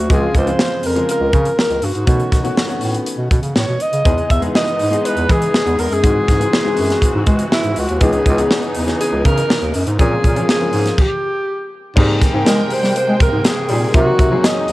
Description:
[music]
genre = polished 1980s jazz-funk pop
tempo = 121 BPM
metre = 4/4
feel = straight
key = unclear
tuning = A4 = 441 Hz
[part]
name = breathy alto saxophone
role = melody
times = 0.0-14.7 s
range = Fb4 to E5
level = -19 LUFS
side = equal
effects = cassette tape
[part]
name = clear grand piano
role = accompaniment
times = 0.0-14.7 s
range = Db3 to Bb4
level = -22 LUFS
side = left 2 dB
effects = analog chorus, cassette tape
[part]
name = mellow bass clarinet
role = bass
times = 0.0-14.7 s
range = Db2 to Ab3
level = -19 LUFS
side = equal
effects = none
[part]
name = crisp fusion drum kit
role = drums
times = 0.1-14.7 s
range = crash cymbal, hi-hat, kick drum, snare drum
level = -17 LUFS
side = equal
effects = none
[part]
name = warm studio string section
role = sustained chords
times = 4.0-14.7 s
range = C3 to G5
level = -25 LUFS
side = equal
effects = cassette tape
[sound]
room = light reverb, studio ambience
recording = home recording on cassette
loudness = -13 LUFS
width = side -18 dB against mid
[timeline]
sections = 0.0-12.0 A section; 12.0-14.7 B section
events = stop 11.0-12.0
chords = 0.1 Dbmaj7; 2.1 B9; 4.1 Emaj7; 6.0 Ab7b13; 8.0 Dbm9; 10.0 Bbm9; 11.0 N.C.; 12.0 Abmaj9; 13.9 Cm7b5

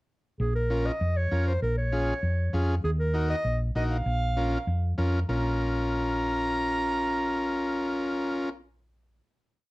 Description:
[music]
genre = latin, cumbia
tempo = 196 BPM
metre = 4/4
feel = straight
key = Bb minor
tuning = A4 = 441 Hz
[part]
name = warm clarinet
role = melody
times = 0.4-8.5 s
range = Ab4 to Bb5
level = -31 LUFS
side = right 1 dB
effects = none
[part]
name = hollow-body short-scale fingered electric bass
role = bass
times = 0.4-9.2 s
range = Bb1 to F2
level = -28 LUFS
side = equal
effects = none
[part]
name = overdriven combo organ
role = accompaniment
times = 0.7-8.5 s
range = Db4 to Bb4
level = -29 LUFS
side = left 1 dB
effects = none
[sound]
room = moderate studio ambience, RT60 0.5 s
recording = dark, warm production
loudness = -25 LUFS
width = side -20 dB against mid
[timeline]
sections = 0.4-5.3 A section; 5.3-7.7 final chord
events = none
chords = 0.4 Bbm; 2.8 Ebm; 4.1 Bbm

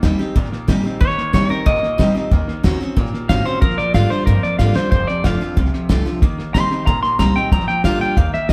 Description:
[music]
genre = rockabilly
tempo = 184 BPM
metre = 4/4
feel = straight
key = unclear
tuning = A4 = 440 Hz
[part]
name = picked steel-string acoustic guitar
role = accompaniment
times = 0.0-8.5 s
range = F2 to G4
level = -25 LUFS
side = equal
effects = none
[part]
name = electric guitar through a small old amp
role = riff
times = 0.0-8.5 s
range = F2 to C4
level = -28 LUFS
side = equal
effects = none
[part]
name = upright bass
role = bass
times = 0.0-8.5 s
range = F1 to Eb3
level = -24 LUFS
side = equal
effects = none
[part]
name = cloth-damped thuddy drum kit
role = drums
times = 0.0-8.5 s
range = hi-hat, kick drum, snare drum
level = -21 LUFS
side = equal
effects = none
[part]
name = clean electric guitar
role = melody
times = 1.0-8.5 s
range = Bb4 to C6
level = -22 LUFS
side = equal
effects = spring reverb
[sound]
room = moderate studio reverb, RT60 0.9 s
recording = band playing live in one room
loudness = -17 LUFS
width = mono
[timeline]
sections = 0.0-8.5 A section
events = drum fill 4.6-4.9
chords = 0.0 Eb; 2.3 Ebm7; 3.6 Bb; 4.9 F; 6.2 Eb; 7.5 Bb

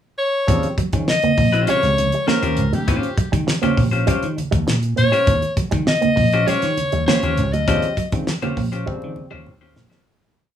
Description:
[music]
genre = funk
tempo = 100 BPM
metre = 4/4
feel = straight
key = Eb mixolydian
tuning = A4 = 439 Hz
[part]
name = breathy alto saxophone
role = melody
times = 0.2-8.1 s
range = G4 to Eb5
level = -20 LUFS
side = left 2 dB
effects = none
[part]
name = barky tine electric piano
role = stabs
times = 0.5-2.8, 7.7-10.0 s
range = C3 to Db4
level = -28 LUFS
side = right 1 dB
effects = overdrive
[part]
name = vintage slap bass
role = bass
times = 0.5-9.9 s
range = Bb1 to Eb3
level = -21 LUFS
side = equal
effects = none
[part]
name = damped 70s drum kit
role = drums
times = 0.5-10.1 s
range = hi-hat, kick drum, snare drum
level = -22 LUFS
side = equal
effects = none
[part]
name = congas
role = percussion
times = 0.5-9.9 s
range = none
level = -29 LUFS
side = right 5 dB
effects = none
[part]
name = electric guitar with an envelope filter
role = riff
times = 0.6-10.0 s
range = Gb3 to Bb3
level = -24 LUFS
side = right 9 dB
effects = tremolo
[part]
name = semi-hollow electric guitar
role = accompaniment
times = 1.5-10.0 s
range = Db4 to C5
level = -22 LUFS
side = left 6 dB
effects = warbly pitch drift
[sound]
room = light reverb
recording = rough home demo mix, small room ambience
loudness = -16 LUFS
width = side -10 dB against mid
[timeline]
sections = 0.0-0.5 pickup bar; 0.5-10.1 groove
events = fade-out 7.7-10.1; drum fill 8.9-10.1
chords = 0.5 Eb13

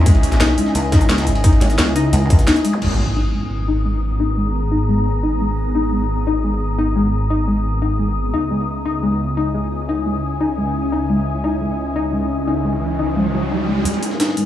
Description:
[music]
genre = dark technical drum and bass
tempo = 174 BPM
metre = 4/4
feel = straight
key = G# minor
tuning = A4 = 440 Hz
[part]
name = dark analog pad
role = sustained chords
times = 0.0-14.5 s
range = G#3 to E5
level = -30 LUFS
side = left 1 dB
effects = chorus, sidechain pumping
[part]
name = pulsing pluck wobble bass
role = bass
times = 0.0-2.5 s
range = G#1 to C#2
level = -16 LUFS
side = equal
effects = chorus
[part]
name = ethereal airy pad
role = texture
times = 0.0-14.5 s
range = B3 to D#6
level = -24 LUFS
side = equal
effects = ensemble chorus, built-in reverb, sidechain pumping
[part]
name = warbly dusty pluck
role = arpeggios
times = 0.1-14.4 s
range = G#3 to D#4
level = -21 LUFS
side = left 2 dB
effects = analog chorus, sidechain pumping, dub echo
[part]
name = phased detuned saw bass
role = bass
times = 0.1-14.4 s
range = D#1 to C#2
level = -21 LUFS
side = equal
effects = phaser, overdrive, sidechain pumping, high-pass filter
[part]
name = breakbeat sampler-style drum kit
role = drums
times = 0.1-2.7, 13.9-14.5 s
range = ride cymbal, snare drum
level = -29 LUFS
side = equal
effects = high-pass filter on cymbals, high-pass filter on snare
[part]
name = drum and bass drum kit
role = drums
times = 0.1-2.9, 13.9-14.4 s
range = crash cymbal, hi-hat, snare drum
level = -22 LUFS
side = equal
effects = high-pass filter on snare, high-pass filter on hats, high-pass filter on cymbals
[part]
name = electronic kick drum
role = drums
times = 0.1-2.4 s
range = none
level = -13 LUFS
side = equal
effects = none
[part]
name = zap, impact and riser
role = sound effects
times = 2.7-4.2, 12.2-13.9 s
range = none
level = -24 LUFS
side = right 1 dB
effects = none
[sound]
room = light reverb, digital ambience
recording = small room ambience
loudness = -16 LUFS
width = side -12 dB against mid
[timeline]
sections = 0.0-2.8 A section; 2.8-13.9 B section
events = drop 0.0-2.8; break 2.5-2.8; impact 2.8-4.2; filter sweep on analog synth pad 2.8-13.9; filter sweep on synth arpeggio sound 2.8-13.9; riser 12.2-13.9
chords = 0.0 C#madd9; 2.8 G#madd9; 8.3 C#madd9; 13.9 G#madd9

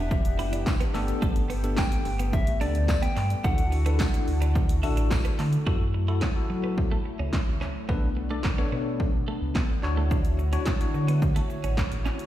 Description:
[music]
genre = dance-pop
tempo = 108 BPM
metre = 4/4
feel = straight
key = D major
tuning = A4 = 442 Hz
[part]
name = soft struck synth lead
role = melody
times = 0.0-5.3 s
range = D5 to G5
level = -34 LUFS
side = left 2 dB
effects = chorus, digital delay
[part]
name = chorused pulse-width pad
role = sustained chords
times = 0.0-12.3 s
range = D3 to F#5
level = -35 LUFS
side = left 2 dB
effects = sidechain pumping
[part]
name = twelve-string electric guitar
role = riff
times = 0.0-12.1 s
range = A3 to F#4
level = -36 LUFS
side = right 6 dB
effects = analog chorus
[part]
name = sub bass with octave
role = bass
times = 0.0-12.1 s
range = E1 to F#3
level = -26 LUFS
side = equal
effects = sidechain pumping
[part]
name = punchy analog drum machine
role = drums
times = 0.1-12.3 s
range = handclaps, hi-hat, kick drum, shaker, snare drum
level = -26 LUFS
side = equal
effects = none
[part]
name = bell-like tine electric piano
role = accompaniment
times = 0.4-11.3 s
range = B3 to D5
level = -34 LUFS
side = left 4 dB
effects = medium stereo tremolo, sidechain pumping
[part]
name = tambourine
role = percussion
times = 0.7-5.2 s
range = none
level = -48 LUFS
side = left 3 dB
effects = none
[sound]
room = digital ambience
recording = played on a big sound system in a bare room, stone room reverb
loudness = -23 LUFS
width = side -13 dB against mid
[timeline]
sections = 0.0-5.7 A section; 5.7-12.3 B section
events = none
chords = 0.0 Em7; 0.9 Gadd9; 3.4 Dadd9; 5.7 F#m7; 7.9 Bm7; 9.8 Dmaj7

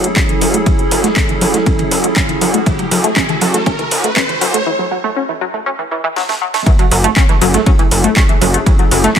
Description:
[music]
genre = melodic techno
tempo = 120 BPM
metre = 4/4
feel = straight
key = F# minor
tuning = A4 = 435 Hz
[part]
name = evolving wavetable pad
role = sustained chords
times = 0.0-9.2 s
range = F#3 to A4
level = -20 LUFS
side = right 2 dB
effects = chorus, built-in reverb, sidechain pumping
[part]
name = tight sequenced synth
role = arpeggios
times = 0.0-9.2 s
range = E3 to C#4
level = -17 LUFS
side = equal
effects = chorus, vintage 12-bit sampler grit, sidechain pumping, dub echo
[part]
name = gritty driven synth bass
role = bass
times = 0.0-9.1 s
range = F#1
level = -16 LUFS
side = equal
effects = tube saturation, sidechain pumping, high-pass filter
[part]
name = house drum kit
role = drums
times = 0.0-9.2 s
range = handclaps, hi-hat, snare drum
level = -18 LUFS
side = equal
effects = overdrive, sidechain pumping on hats
[part]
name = riser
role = sound effects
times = 1.4-4.7 s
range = none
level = -23 LUFS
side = right 1 dB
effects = none
[part]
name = dusty soul sampler-style drum kit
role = drums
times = 0.2-9.2 s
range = ride cymbal, snare drum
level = -28 LUFS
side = right 3 dB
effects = none
[part]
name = electronic kick drum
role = drums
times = 0.2-9.2 s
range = none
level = -14 LUFS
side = equal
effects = overdrive
[sound]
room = light reverb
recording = high-pass filter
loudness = -11 LUFS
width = side -8 dB against mid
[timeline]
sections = 0.0-6.7 A section; 6.7-9.2 B section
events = build-up 0.0-6.7; filter sweep on synth arpeggio sound 0.0-6.7; riser 1.4-4.7; break 4.7-6.7; drum fill 6.2-6.7; drop 6.7-9.2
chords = 0.0 F#m7

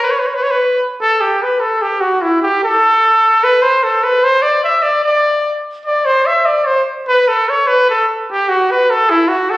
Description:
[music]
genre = mexican folk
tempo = 149 BPM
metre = 3/4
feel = straight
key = unclear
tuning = A4 = 445 Hz
[part]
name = clear trumpet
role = solo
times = 0.0-9.6 s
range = E4 to E5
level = -11 LUFS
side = equal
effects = none
[sound]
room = wet recital hall reverb, RT60 1.4 s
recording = recorded on a phone in the room, studio reverb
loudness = -11 LUFS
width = side -17 dB against mid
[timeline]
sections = 0.0-1.2 A section; 1.2-9.6 B section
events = none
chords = none

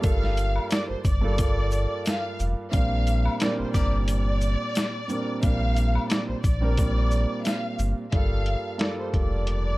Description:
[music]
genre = hip hop, boom-bap hip-hop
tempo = 89 BPM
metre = 4/4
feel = swing 54% on 16ths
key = G minor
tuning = A4 = 437 Hz
[part]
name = warm symphonic violin section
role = melody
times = 0.0-9.8 s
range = C5 to F5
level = -32 LUFS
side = equal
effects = high-pass filter, low-pass filter, tape echo
[part]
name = dark baby grand piano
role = accompaniment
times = 0.0-9.8 s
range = G2 to Bb4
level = -30 LUFS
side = right 2 dB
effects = cassette tape, high-pass filter, low-pass filter
[part]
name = sub bass with octave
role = bass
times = 0.0-9.8 s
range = F1 to Bb1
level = -24 LUFS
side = equal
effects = none
[part]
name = dusty soul sampler-style drum kit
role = drums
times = 0.0-9.6 s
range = hi-hat, kick drum, shaker, snare drum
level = -26 LUFS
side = equal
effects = overdrive
[part]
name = egg shaker and woodblock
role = percussion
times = 0.0-8.0 s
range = none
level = -39 LUFS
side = left 3 dB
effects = none
[part]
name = bright trumpet section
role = stabs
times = 3.7-4.0 s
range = Bb3 to D5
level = -34 LUFS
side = left 2 dB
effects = high-pass filter, low-pass filter, tape echo
[sound]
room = small room reverb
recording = dark, warm production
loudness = -22 LUFS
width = side -19 dB against mid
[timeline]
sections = 0.0-8.1 A section; 8.1-9.8 B section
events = none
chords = 0.0 Gm7; 2.7 Bb6; 8.1 Gm7

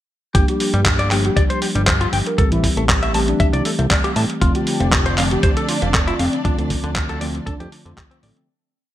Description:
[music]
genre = nu-disco, nu disco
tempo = 118 BPM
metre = 4/4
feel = swing 53% on 16ths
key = G dorian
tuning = A4 = 441 Hz
[part]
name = mellow tine electric piano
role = accompaniment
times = 0.3-8.5 s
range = D3 to A4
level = -23 LUFS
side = equal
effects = lush chorus, low-pass filter
[part]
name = direct-recorded clean electric guitar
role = riff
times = 0.3-8.3 s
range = D3 to A5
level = -25 LUFS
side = left 2 dB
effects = lush chorus
[part]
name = fat analog bass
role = bass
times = 0.3-8.3 s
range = F1 to A2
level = -21 LUFS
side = equal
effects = tube saturation
[part]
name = dusty soul sampler-style drum kit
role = drums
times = 0.3-8.5 s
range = handclaps, hi-hat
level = -22 LUFS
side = equal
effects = gated reverb
[part]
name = electronic kick drum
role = drums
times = 0.3-8.1 s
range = none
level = -19 LUFS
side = equal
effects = none
[part]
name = soft octave-layered synth lead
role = melody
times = 0.5-8.5 s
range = C4 to Bb4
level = -26 LUFS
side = left 1 dB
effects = chorus, digital delay
[part]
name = warm studio string section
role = sustained chords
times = 4.4-8.5 s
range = D4 to D5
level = -29 LUFS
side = right 1 dB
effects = sidechain pumping
[sound]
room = light reverb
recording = bright 1980s-style digital production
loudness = -15 LUFS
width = side -13 dB against mid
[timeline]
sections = 0.3-8.5 groove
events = filter sweep on tine electric piano 0.3-8.5; fade-out 5.8-8.5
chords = 0.3 Gm7; 2.4 Am7; 4.4 F6; 6.5 Dm7

